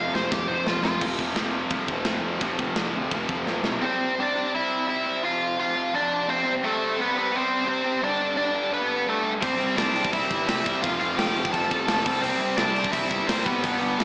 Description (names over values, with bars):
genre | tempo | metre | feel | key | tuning
punk rock | 171 BPM | 4/4 | straight | C major | A4 = 437 Hz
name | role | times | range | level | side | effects
biting lead guitar | melody | 0.0-1.0, 3.8-14.0 s | A3 to A5 | -24 LUFS | equal | overdrive
distorted electric guitar | riff | 0.0-14.0 s | F2 to C4 | -29 LUFS | equal | distortion, slapback echo
high-gain distorted guitar | riff | 0.0-3.8, 9.4-14.0 s | F2 to C4 | -30 LUFS | equal | distortion, slapback echo
fuzz picked electric bass | bass | 0.0-3.8, 9.4-14.0 s | F1 to D2 | -32 LUFS | equal | overdrive
tight metal drum kit | drums | 0.2-3.7, 9.4-14.0 s | crash cymbal, kick drum, snare drum | -28 LUFS | equal | none
room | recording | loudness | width
studio ambience | live gig heard through the venue's PA, recital hall reverb, small speaker sound | -22 LUFS | side -24 dB against mid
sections
0.0-1.0 A section; 1.0-3.8 B section; 3.8-14.0 C section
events
drum fill 0.0-1.0, 3.5-3.8; lead electric guitar solo 0.0-1.0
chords
0.0 F5; 3.8 C; 5.2 F5; 6.4 C5; 8.0 G; 9.4 C; 10.8 F; 12.1 C